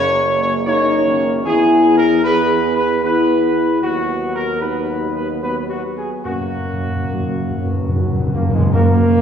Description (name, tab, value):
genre	classical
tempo	74 BPM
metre	3/4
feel	uneven beats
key	F# mixolydian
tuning	A4 = 439 Hz
part	mellow trumpet section	melody	0.0-9.0 s	F#4 to C#5	-19 LUFS	right 1 dB	none
part	bright trombone section	sustained chords	0.0-9.2 s	C#3 to B3	-23 LUFS	right 2 dB	none
part	mellow French horn section	sustained chords	0.0-9.0 s	A#3 to G#4	-20 LUFS	left 4 dB	none
part	clear tuba	bass	0.0-9.2 s	F#1 to F#2	-23 LUFS	right 4 dB	none
part	timpani	percussion	0.0-0.2, 6.2-9.2 s	F#2	-18 LUFS	equal	none
room	wet scoring stage reverb, RT60 1.8 s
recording	heard from further back in the room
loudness	-14 LUFS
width	side -8 dB against mid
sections	0.0-8.7 A section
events	timpani fill 6.3-8.7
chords	0.0 F#; 1.4 E; 3.8 B/D#; 6.3 F#